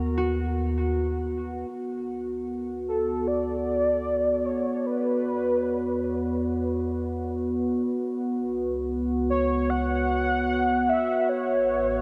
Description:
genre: ambient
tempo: 75 BPM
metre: 4/4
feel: straight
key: unclear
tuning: A4 = 437 Hz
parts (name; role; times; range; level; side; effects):
- concert harp; arpeggios; 0.0-2.6 s; F#4 to A#4; -38 LUFS; equal; tape echo
- round analog bass; bass; 0.0-12.0 s; A1 to E2; -35 LUFS; equal; none
- analog drone; drone; 0.0-12.0 s; B3 to F#4; -30 LUFS; equal; chorus
- warm velvety synth lead; melody; 2.9-12.0 s; A4 to F#5; -28 LUFS; equal; chorus, tape echo
room: wet huge ambient reverb, RT60 8.4 s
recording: dreamy mix soaked in reverb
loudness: -26 LUFS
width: mono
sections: 0.0-1.7 A section; 1.7-12.0 B section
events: fade-in on analog synth bass 1.7-12.0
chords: 0.0 D#m; 1.7 D; 4.9 E5; 8.1 C#7sus4; 11.3 A6

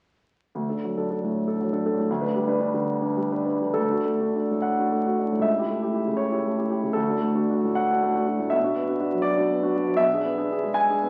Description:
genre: classical, romantic character piece for solo piano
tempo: 63-85 BPM (dotted quarters)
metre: 6/8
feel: rubato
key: D major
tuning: A4 = 440 Hz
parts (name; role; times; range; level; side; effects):
- warm grand piano; solo; 0.5-11.1 s; C#2 to G#5; -24 LUFS; equal; none
room: wet recital hall reverb, RT60 1.4 s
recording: very old 78 rpm record, vinyl crackle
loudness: -24 LUFS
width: mono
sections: 0.5-3.8 A section; 3.8-11.1 B section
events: none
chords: 0.5 D; 2.1 G/D; 3.8 D; 5.5 A7/C#; 7.0 D; 8.5 Bm; 10.0 E7/B

